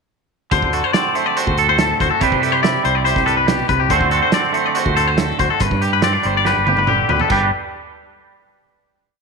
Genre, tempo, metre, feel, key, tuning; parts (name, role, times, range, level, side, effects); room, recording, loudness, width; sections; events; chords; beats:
math rock and midwest emo; 142 BPM; 4/4; straight; G major; A4 = 440 Hz
twangy electric guitar; accompaniment; 0.5-7.5 s; G2 to C5; -19 LUFS; right 12 dB; spring reverb
twangy electric guitar; arpeggios; 0.5-7.5 s; G4 to D5; -18 LUFS; left 13 dB; vibrato effect
picked electric bass; bass; 0.5-7.5 s; G1 to C3; -22 LUFS; left 1 dB
loose indie drum kit; drums; 0.5-7.4 s; crash cymbal, hi-hat, kick drum, snare drum, toms; -22 LUFS; right 3 dB
moderate echo chamber reverb, RT60 1.8 s, studio reverb; 1960s-style stereo with parts hard left and right; -14 LUFS; side -4 dB against mid
0.5-7.3 A section; 7.3-9.0 final chord
drum fill 6.5-7.3
0.5 D7; 2.2 Cmaj7; 3.9 D7; 5.6 G; 7.3 N.C.
| 0.52 0.95 1.37 1.80 | 2.22 2.65 3.07 3.49 | 3.92 4.34 4.76 5.19 | 5.61 6.03 6.46 6.88 | 7.30